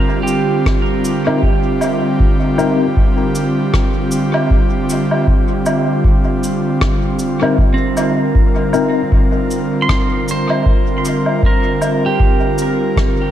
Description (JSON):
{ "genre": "ambient dub", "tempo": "78 BPM", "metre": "4/4", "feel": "swing 57% on 16ths", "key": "unclear", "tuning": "A4 = 440 Hz", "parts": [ { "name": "airy breathy pad", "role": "sustained chords", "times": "0.0-13.3 s", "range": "D3 to Bb4", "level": "-17 LUFS", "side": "equal", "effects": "chorus" }, { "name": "pedal steel guitar", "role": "arpeggios", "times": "0.0-2.7, 7.7-13.3 s", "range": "C4 to C6", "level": "-22 LUFS", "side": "right 5 dB", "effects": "tape echo" }, { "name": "cabasa, rim click and woodblock", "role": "drums", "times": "0.3-13.1 s", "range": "none", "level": "-23 LUFS", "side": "equal", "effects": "dub echo" }, { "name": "electronic kick drum", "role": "drums", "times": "0.7-13.1 s", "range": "none", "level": "-15 LUFS", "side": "equal", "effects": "none" }, { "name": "mellow tine electric piano", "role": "stabs", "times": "1.3-9.0 s", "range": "C4 to Bb4", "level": "-22 LUFS", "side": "left 6 dB", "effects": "fast stereo tremolo, dub echo" } ], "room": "light reverb, small room ambience", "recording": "dark, warm production", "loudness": "-13 LUFS", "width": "side -11 dB against mid", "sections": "0.0-13.3 A section", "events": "none", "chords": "0.0 C7(no3)" }